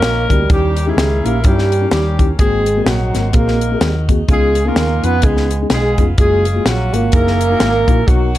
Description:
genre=uptempo gospel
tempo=127 BPM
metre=4/4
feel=swing 58% on 8ths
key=F# major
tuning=A4 = 439 Hz
part: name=mellow French horn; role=melody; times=0.0-8.4 s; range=F#3 to B3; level=-20 LUFS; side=right 4 dB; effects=none
part: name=warm saxophone section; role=melody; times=0.0-8.4 s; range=A#3 to B4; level=-19 LUFS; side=left 1 dB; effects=none
part: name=mellow tine electric piano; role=accompaniment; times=0.0-8.4 s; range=G#2 to A#4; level=-22 LUFS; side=left 4 dB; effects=medium stereo tremolo
part: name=hollow-body short-scale fingered electric bass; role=bass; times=0.0-8.4 s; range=E#1 to G2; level=-17 LUFS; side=equal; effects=none
part: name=tight funk drum kit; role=drums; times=0.0-8.4 s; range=hi-hat, kick drum, snare drum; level=-15 LUFS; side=equal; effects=none
room=light reverb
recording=dark, warm production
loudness=-12 LUFS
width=side -14 dB against mid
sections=0.0-8.4 A section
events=none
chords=0.5 D#7b9; 2.4 G#9; 4.3 C#9; 6.2 F#maj9; 7.1 F#13

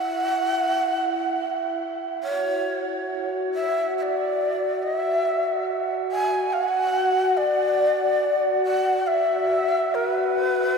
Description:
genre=ambient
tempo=free time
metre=none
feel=none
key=unclear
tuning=A4 = 444 Hz
part: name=breathy long shakuhachi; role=melody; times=0.0-10.8 s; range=B4 to G#5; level=-22 LUFS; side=equal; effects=diffuse ambient delay
part: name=glass harmonica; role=texture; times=0.0-10.8 s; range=E4 to F#5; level=-26 LUFS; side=equal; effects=none
room=wet huge ambient reverb, RT60 7.5 s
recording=dreamy mix soaked in reverb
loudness=-21 LUFS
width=side -5 dB against mid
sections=0.0-10.8 A section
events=fade-in on glass harmonica 0.0-10.8; fade-in on shakuhachi 0.0-10.8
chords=none

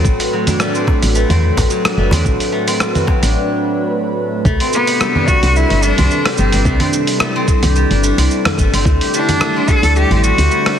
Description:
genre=organic downtempo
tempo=109 BPM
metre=4/4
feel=swing 54% on 16ths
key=unclear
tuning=A4 = 435 Hz
part: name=airy breathy pad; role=sustained chords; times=0.0-10.8 s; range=A2 to C5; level=-21 LUFS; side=equal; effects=chorus, sidechain pumping
part: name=steel-string zither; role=arpeggios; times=0.0-10.8 s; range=F#3 to G4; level=-18 LUFS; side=left 1 dB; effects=tape echo
part: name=woody FM bass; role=bass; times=0.0-10.5 s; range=F#1 to E2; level=-15 LUFS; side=equal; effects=sidechain pumping
part: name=electronic kick drum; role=drums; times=0.0-9.8 s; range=none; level=-16 LUFS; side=equal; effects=small room ambience
part: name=dusty soul sampler-style drum kit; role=drums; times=0.1-10.8 s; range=cabasa, congas, hi-hat, rim click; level=-19 LUFS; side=right 1 dB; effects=small room ambience
part: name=cajon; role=percussion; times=0.9-3.2 s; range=none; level=-22 LUFS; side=right 1 dB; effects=none
part: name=bright cello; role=melody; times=4.7-10.8 s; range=B3 to A4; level=-17 LUFS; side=equal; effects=tape echo
room=moderate lush hall reverb, RT60 1.9 s, small room ambience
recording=heavily compressed radio sound, multiband compression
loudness=-12 LUFS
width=side -9 dB against mid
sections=0.0-4.5 A section; 4.5-10.8 B section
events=break 3.4-4.5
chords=0.0 Am69; 4.5 Cmaj7; 8.9 D9sus4

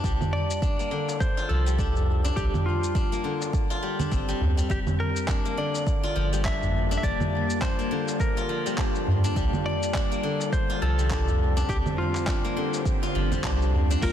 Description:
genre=organic downtempo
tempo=103 BPM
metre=4/4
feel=swing 58% on 16ths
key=unclear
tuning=A4 = 439 Hz
part: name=steel-string zither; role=arpeggios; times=0.0-14.1 s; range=D3 to F4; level=-30 LUFS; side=left 3 dB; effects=digital delay
part: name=warm sub bass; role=bass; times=0.0-14.1 s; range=G1 to G2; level=-25 LUFS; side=equal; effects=sidechain pumping
part: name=dusty soul sampler-style drum kit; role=drums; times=0.0-14.1 s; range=congas, handclaps, hi-hat, shaker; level=-33 LUFS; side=right 2 dB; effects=small room reverb
part: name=electronic kick drum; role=drums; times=0.0-14.1 s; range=none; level=-28 LUFS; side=equal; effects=small room reverb
part: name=darbuka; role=percussion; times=0.2-14.0 s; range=none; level=-33 LUFS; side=left 1 dB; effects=none
part: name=clean lap steel guitar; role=melody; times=0.3-14.1 s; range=F4 to E5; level=-32 LUFS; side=equal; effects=vintage 12-bit sampler grit, digital delay
part: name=bowed-like drone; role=sustained chords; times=5.5-14.1 s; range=D3 to D5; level=-32 LUFS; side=equal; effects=built-in reverb, sidechain pumping
part: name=deep mellow chord stab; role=accompaniment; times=14.0-14.1 s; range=Bb3 to Bb4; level=-28 LUFS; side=left 4 dB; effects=chorus, sidechain pumping
room=moderate echo chamber reverb, RT60 2.1 s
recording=dense, heavily limited modern master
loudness=-23 LUFS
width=side -10 dB against mid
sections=0.0-14.0 A section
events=none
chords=0.0 Csus2

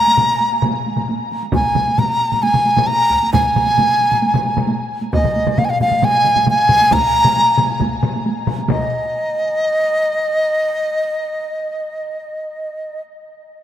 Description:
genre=japanese traditional, taiko drum ensemble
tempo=134 BPM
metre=4/4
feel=straight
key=unclear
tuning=A4 = 440 Hz
part: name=breathy large dizi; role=melody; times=0.0-13.0 s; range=Eb5 to Bb5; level=-16 LUFS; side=equal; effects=none
part: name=taiko ensemble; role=percussion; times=0.1-8.9 s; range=none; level=-24 LUFS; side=right 2 dB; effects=none
part: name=solo taiko drums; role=percussion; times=0.2-9.1 s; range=none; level=-23 LUFS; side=left 6 dB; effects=none
part: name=solo taiko drums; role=percussion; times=0.2-9.1 s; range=none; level=-21 LUFS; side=right 6 dB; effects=none
part: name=taiko ensemble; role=percussion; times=1.5-8.9 s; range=none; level=-23 LUFS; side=right 1 dB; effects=none
room=moderate huge ambient reverb, RT60 8.7 s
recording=none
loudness=-14 LUFS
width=side -10 dB against mid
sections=0.0-8.7 A section; 8.7-12.2 B section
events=speeding up 0.0-12.2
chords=none

